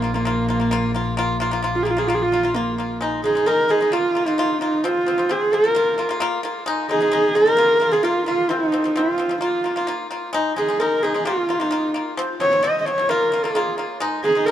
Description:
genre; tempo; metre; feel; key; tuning
mongolian traditional, Mongolian folk; 131 BPM; 4/4; straight; unclear; A4 = 440 Hz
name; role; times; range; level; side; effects
rich horsehead fiddle; melody; 0.0-14.5 s; Bb3 to Eb5; -19 LUFS; right 1 dB; none
pipa; arpeggios; 0.0-14.5 s; F3 to F4; -24 LUFS; left 2 dB; none
clear double bass; drone; 0.0-3.1 s; Bb1; -27 LUFS; left 2 dB; none
room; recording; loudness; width
moderate huge ambient reverb, RT60 5.0 s; dark, warm production; -18 LUFS; side -11 dB against mid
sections
0.0-3.0 A section; 3.0-14.5 B section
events
none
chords
0.0 Bb5; 3.0 Ab5; 3.9 Bb5; 4.8 F5; 5.8 Bb5; 6.7 Ab5; 7.6 Bb5; 8.5 F5; 9.4 Bb5; 10.3 Ab5; 11.3 Bb5; 12.2 F5; 13.1 Bb5; 14.0 Ab5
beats
0.27 0.72 | 1.18 1.64 2.10 2.55 | 3.01 3.47 3.93 4.38 | 4.84 5.30 5.76 6.22 | 6.67 7.13 7.59 8.05 | 8.51 8.96 9.42 9.88 | 10.34 10.80 11.26 11.72 | 12.18 12.63 13.09 13.55 | 14.01 14.47

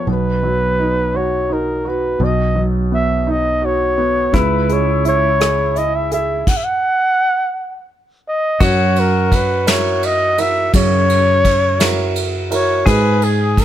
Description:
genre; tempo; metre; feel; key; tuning
acoustic folk-pop ballad; 56 BPM (dotted quarters); 6/8; straight; unclear; A4 = 442 Hz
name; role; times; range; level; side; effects
breathy flugelhorn; melody; 0.0-13.6 s; G#4 to F#5; -17 LUFS; equal; none
warm upright piano; accompaniment; 0.0-13.6 s; B2 to A#4; -21 LUFS; right 2 dB; none
fretless electric bass; bass; 0.1-13.6 s; B1 to G#2; -19 LUFS; right 1 dB; none
pedal steel guitar; second line; 4.3-13.6 s; E4 to G#4; -23 LUFS; left 1 dB; none
soft brush drum kit; drums; 4.3-13.6 s; crash cymbal, hi-hat, kick drum, ride cymbal, rim click, snare drum; -19 LUFS; equal; none
room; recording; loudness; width
little or no reverb; close, detailed microphones; -13 LUFS; side -11 dB against mid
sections
0.1-8.6 A section; 8.6-13.6 B section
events
stop 6.5-8.6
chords
0.1 B; 4.3 C#m; 6.5 N.C.; 8.6 F#7; 12.9 G#m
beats
| 0.08 1.14 | 2.21 3.27 | 4.34 5.40 | 6.47 7.54 | 8.61 9.67 | 10.74 11.80 | 12.87

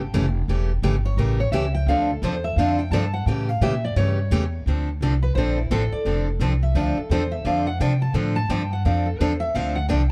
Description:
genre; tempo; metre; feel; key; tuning
acoustic string swing (jazz manouche); 172 BPM; 4/4; swing 62% on 8ths; D minor; A4 = 440 Hz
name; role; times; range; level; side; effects
picked steel-string acoustic guitar; second line; 0.0-10.1 s; E4 to A5; -30 LUFS; equal; none
upright bass; bass; 0.0-10.1 s; E1 to C3; -25 LUFS; equal; none
picked steel-string acoustic guitar; accompaniment; 0.1-10.0 s; C#3 to A4; -28 LUFS; equal; none
room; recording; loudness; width
little or no reverb; dark, warm production; -22 LUFS; mono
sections
0.0-4.7 A section; 4.7-10.1 A section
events
steel-string acoustic guitar solo 0.0-10.1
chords
0.0 A7; 1.9 Dm7; 3.3 A7b9; 4.7 Dm7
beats
0.14 | 0.49 0.83 1.18 1.53 | 1.88 2.23 2.57 2.92 | 3.27 3.62 3.97 4.31 | 4.66 5.01 5.36 5.71 | 6.06 6.41 6.76 7.11 | 7.46 7.80 8.15 8.50 | 8.85 9.20 9.55 9.90

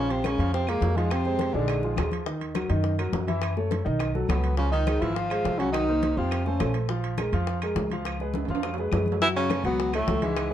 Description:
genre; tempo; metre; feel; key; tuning
Afro-Cuban jazz; 207 BPM; 4/4; straight; Bb minor; A4 = 441 Hz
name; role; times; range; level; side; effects
breathy tenor saxophone; melody; 0.0-2.1, 4.3-6.7, 9.2-10.5 s; Ab3 to F4; -28 LUFS; right 1 dB; none
warm baritone saxophone; second line; 0.0-2.1, 4.3-6.7, 9.2-10.5 s; Ab2 to F3; -33 LUFS; left 3 dB; none
warm concert grand piano; accompaniment; 0.0-10.5 s; D3 to Gb5; -30 LUFS; equal; none
upright bass; bass; 0.0-10.5 s; Ab1 to Gb2; -28 LUFS; equal; none
congas; percussion; 0.1-10.5 s; none; -34 LUFS; left 4 dB; none
timbales; percussion; 0.1-10.5 s; none; -37 LUFS; right 8 dB; none
bongos; percussion; 0.2-10.5 s; none; -37 LUFS; left 7 dB; none
claves; percussion; 0.2-10.5 s; none; -43 LUFS; left 2 dB; none
room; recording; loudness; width
moderate studio reverb, RT60 0.7 s; dark, warm production; -24 LUFS; side -11 dB against mid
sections
0.0-9.2 A section; 9.2-10.5 B section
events
drum fill 8.3-9.2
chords
0.0 Bbm7; 1.1 Fmadd11; 1.7 Bb7; 2.3 Ebm; 3.4 Gbm7; 4.0 B9; 4.6 Dbmaj9; 5.7 Cm7b5; 6.3 F; 6.9 Bbm7; 8.1 Db7; 9.2 F#m7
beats
0.24 0.53 0.82 | 1.11 1.40 1.69 1.98 | 2.27 2.56 2.85 3.13 | 3.42 3.71 4.00 4.29 | 4.58 4.87 5.16 5.45 | 5.74 6.03 6.32 6.61 | 6.90 7.18 7.47 7.76 | 8.05 8.34 8.63 8.92 | 9.21 9.50 9.79 10.08 | 10.37

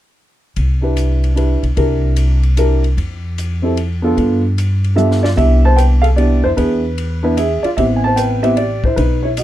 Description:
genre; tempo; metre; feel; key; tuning
jazz piano trio; 150 BPM; 3/4; swing 66% on 8ths; C major; A4 = 436 Hz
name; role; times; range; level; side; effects
upright bass; bass; 0.6-9.4 s; A1 to G2; -15 LUFS; equal; none
compact cocktail drum kit; drums; 0.6-9.4 s; hi-hat, kick drum, ride cymbal, snare drum, toms; -26 LUFS; left 2 dB; none
dark grand piano; melody; 0.8-9.4 s; B3 to A5; -16 LUFS; right 1 dB; none
room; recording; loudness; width
little or no reverb; dark, warm production; -12 LUFS; side -13 dB against mid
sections
0.6-5.4 A section; 5.4-9.4 B section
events
drum fill 5.0-5.4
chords
0.6 Cmaj7; 1.8 C7; 3.0 N.C.; 4.2 G7; 5.4 Cmaj7; 6.6 E7; 7.8 Am9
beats
| 0.56 0.96 1.36 | 1.76 2.16 2.56 | 2.96 3.37 3.77 | 4.17 4.57 4.97 | 5.37 5.77 6.17 | 6.57 6.97 7.37 | 7.77 8.17 8.57 | 8.97 9.37

